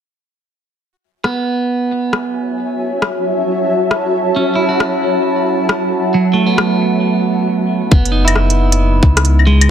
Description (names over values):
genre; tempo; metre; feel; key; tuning
future garage; 135 BPM; 4/4; swing 65% on 16ths; F# dorian; A4 = 438 Hz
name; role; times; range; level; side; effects
granular cloud pad; sustained chords; 2.3-9.7 s; F#4 to A5; -17 LUFS; left 1 dB; built-in reverb, sidechain pumping
clean electric guitar; accompaniment; 1.2-9.7 s; F#3 to F#4; -16 LUFS; right 4 dB; vintage 12-bit sampler grit, sidechain pumping, analog delay
organic electronic drum kit; drums; 1.2-9.7 s; claves, hi-hat, rim click; -17 LUFS; left 2 dB; none
dark detuned saw bass; bass; 7.9-9.7 s; F#1 to C#2; -12 LUFS; left 1 dB; sidechain pumping
electronic kick drum; drums; 7.9-9.1 s; none; -9 LUFS; equal; none
room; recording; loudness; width
light reverb; dense, heavily limited modern master; -12 LUFS; side -9 dB against mid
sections
0.8-7.9 A section; 7.9-9.7 B section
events
none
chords
0.8 F#m7; 7.9 F#7(no3)